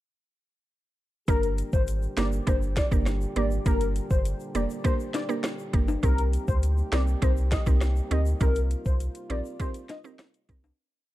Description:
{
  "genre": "dancehall",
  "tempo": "101 BPM",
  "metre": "4/4",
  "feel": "straight",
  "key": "C minor",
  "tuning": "A4 = 440 Hz",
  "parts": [
    { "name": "warm velvety synth lead", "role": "melody", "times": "1.3-10.0 s", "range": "Bb4 to Eb5", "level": "-33 LUFS", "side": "left 3 dB", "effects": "chorus, ping-pong delay" },
    { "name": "mallet-like synth pluck", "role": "accompaniment", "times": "1.3-10.6 s", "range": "Bb3 to Bb4", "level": "-32 LUFS", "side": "right 4 dB", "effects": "chorus" },
    { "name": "mellow French horn section", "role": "sustained chords", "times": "1.3-10.8 s", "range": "Bb2 to G4", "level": "-40 LUFS", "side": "equal", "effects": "sidechain pumping" },
    { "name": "round analog bass", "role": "bass", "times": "1.3-10.7 s", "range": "F1 to D2", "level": "-26 LUFS", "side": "equal", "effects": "none" },
    { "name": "afro-pop drum kit", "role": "drums", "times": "1.3-10.6 s", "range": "hi-hat, kick drum, rim click, snare drum", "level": "-26 LUFS", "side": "equal", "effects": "none" },
    { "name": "egg shaker and timbales", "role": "percussion", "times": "1.3-10.8 s", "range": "none", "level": "-39 LUFS", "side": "left 6 dB", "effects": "none" }
  ],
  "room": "little or no reverb",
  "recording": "dark, warm production",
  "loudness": "-24 LUFS",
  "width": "side -16 dB against mid",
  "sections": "1.3-10.8 chorus",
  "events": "fade-out 8.4-10.8",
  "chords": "1.3 Gm; 6.0 Cm7"
}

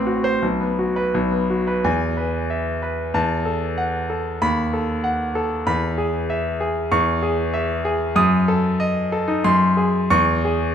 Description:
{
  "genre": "classical, virtuoso piano study",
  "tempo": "83-97 BPM",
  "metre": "2/4",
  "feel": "rubato",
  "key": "E major, C# minor from 6.9 s",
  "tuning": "A4 = 440 Hz",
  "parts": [
    { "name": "bright concert grand piano", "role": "solo", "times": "0.0-10.7 s", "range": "A1 to D#6", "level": "-18 LUFS", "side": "equal", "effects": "none" }
  ],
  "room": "wet recital hall reverb, RT60 1.5 s",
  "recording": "none",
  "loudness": "-18 LUFS",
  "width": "side -8 dB against mid",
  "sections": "0.0-1.8 A section; 1.8-10.7 B section",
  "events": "none",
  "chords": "0.4 B5; 1.8 E; 3.1 F#m7/E; 4.4 B7/D#; 5.7 E; 6.9 C#m/E; 8.2 D#dim/F#; 9.4 G#7/F#; 10.1 C#m/E"
}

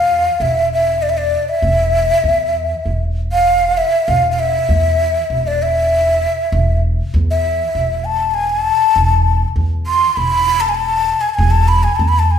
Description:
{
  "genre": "Arabic maqam ensemble",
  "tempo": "98 BPM",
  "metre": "4/4",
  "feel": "straight",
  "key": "E maqam hijaz",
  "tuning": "A4 = 440 Hz",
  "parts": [
    { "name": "breathy ney", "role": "melody", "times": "0.0-12.4 s", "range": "D5 to C6", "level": "-14 LUFS", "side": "left 1 dB", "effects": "none" },
    { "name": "upright bass", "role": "bass", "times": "0.0-12.4 s", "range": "E1 to E2", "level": "-18 LUFS", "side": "equal", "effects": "none" }
  ],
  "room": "wet large studio reverb, RT60 1.3 s",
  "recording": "band playing live in one room",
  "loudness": "-13 LUFS",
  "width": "side -8 dB against mid",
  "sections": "0.0-12.4 A section",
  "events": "none",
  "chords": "none"
}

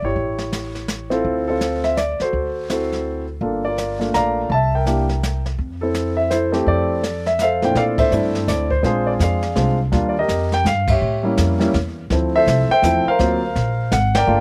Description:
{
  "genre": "jazz piano trio",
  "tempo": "166 BPM",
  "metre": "3/4",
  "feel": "swing 63% on 8ths",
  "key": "unclear",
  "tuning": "A4 = 440 Hz",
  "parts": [
    { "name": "warm grand piano", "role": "melody", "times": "0.0-14.4 s", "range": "Bb2 to Bb5", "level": "-21 LUFS", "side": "equal", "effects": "none" },
    { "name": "upright bass", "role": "bass", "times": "0.0-14.4 s", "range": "G1 to Bb2", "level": "-25 LUFS", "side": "equal", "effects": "none" },
    { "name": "jazz brush drum kit", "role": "drums", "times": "0.2-14.4 s", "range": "brushed snare drum, hi-hat, kick drum, ride cymbal, snare drum", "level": "-28 LUFS", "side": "equal", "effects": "none" }
  ],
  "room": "little or no reverb",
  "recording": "recorded outdoors, with no room sound",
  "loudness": "-19 LUFS",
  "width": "mono",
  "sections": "0.0-7.8 A section; 7.8-14.4 B section",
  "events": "band accent 7.9, 10.8, 14.1",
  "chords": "0.2 A7; 1.2 Dm7; 3.4 Gm7; 4.5 C7; 5.6 Fmaj7; 7.8 Bbmaj9#11; 8.8 Bb9; 9.9 Ebmaj9; 11.0 A7b9; 12.1 Dm9; 13.2 D7alt"
}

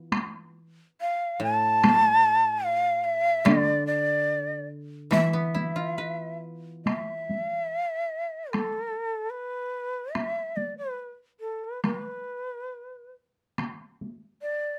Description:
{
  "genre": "japanese traditional, Japanese chamber music",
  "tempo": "66-76 BPM",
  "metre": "2/4",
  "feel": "rubato",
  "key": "E in sen",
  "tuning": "A4 = 440 Hz",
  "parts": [
    { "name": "koto", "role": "accompaniment", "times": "0.0-7.7 s", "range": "A2 to B4", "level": "-33 LUFS", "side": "equal", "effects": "none" },
    { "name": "taiko ensemble", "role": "percussion", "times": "0.1-14.2 s", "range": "none", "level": "-28 LUFS", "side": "equal", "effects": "none" },
    { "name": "breathy shakuhachi", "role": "melody", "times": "1.0-14.8 s", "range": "A4 to A5", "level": "-28 LUFS", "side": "equal", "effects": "none" }
  ],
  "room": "light reverb",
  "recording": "close, detailed microphones",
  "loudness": "-27 LUFS",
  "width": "mono",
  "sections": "0.0-6.9 A section; 6.9-14.8 B section",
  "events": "none",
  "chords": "none"
}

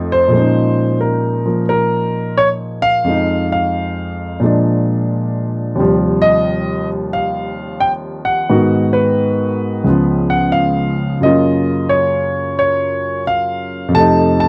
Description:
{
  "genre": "solo jazz",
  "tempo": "88 BPM",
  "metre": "4/4",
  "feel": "swing 67% on 8ths",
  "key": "Bb minor",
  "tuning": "A4 = 440 Hz",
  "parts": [
    { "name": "clear grand piano", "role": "solo", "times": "0.0-14.5 s", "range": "Db2 to A5", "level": "-16 LUFS", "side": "equal", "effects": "none" }
  ],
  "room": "light reverb",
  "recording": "dry, close 1970s-style studio recording",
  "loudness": "-16 LUFS",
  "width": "mono",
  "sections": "0.3-14.5 A section",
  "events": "none",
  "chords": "0.3 Bbm11; 3.1 Fm7; 4.4 Bb7; 5.8 Eb69; 8.5 Abm7; 9.9 Db7; 11.2 Gbmaj7; 13.9 F7"
}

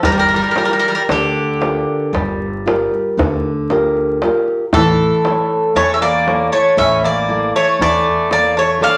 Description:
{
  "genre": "greek folk, Greek bouzouki band",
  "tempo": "116 BPM (eighths)",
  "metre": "9/8",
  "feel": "straight",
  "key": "unclear",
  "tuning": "A4 = 441 Hz",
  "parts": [
    { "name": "Greek bouzouki", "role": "melody", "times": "0.0-9.0 s", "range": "G4 to F5", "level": "-18 LUFS", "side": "equal", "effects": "none" },
    { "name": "Greek bouzouki", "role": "second line", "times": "0.0-9.0 s", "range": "D3 to D4", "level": "-21 LUFS", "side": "equal", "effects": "none" },
    { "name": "nylon-string guitar", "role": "accompaniment", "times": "0.0-9.0 s", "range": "D3 to E5", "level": "-21 LUFS", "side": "equal", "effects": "none" },
    { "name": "upright bass", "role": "bass", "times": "0.0-8.9 s", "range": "G1 to E2", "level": "-29 LUFS", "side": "equal", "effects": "none" },
    { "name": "darbuka", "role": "percussion", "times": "0.0-9.0 s", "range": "none", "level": "-24 LUFS", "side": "equal", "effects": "none" }
  ],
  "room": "moderate large studio reverb, RT60 0.9 s",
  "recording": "vinyl crackle",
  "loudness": "-15 LUFS",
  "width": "mono",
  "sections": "0.0-9.0 A section",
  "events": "speeding up 0.0-9.0",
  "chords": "0.0 Gm7; 4.7 A"
}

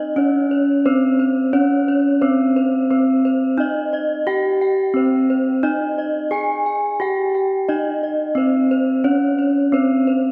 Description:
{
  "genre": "gamelan",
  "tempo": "88 BPM",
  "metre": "4/4",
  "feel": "straight",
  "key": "C pelog",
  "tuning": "A4 = 439 Hz",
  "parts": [
    { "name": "gamelan-type bronze metallophone", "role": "melody", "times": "0.0-10.3 s", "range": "C4 to Ab4-20c", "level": "-19 LUFS", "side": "equal", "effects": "none" },
    { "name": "gamelan-type bronze metallophone", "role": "arpeggios", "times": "0.0-10.3 s", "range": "C5 to Ab5-20c", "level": "-26 LUFS", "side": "equal", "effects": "none" }
  ],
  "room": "wet concert hall reverb, RT60 2.3 s",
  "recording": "recorded in a church or concert hall",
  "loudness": "-18 LUFS",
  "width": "mono",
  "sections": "0.0-10.3 A section",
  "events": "none",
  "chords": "none"
}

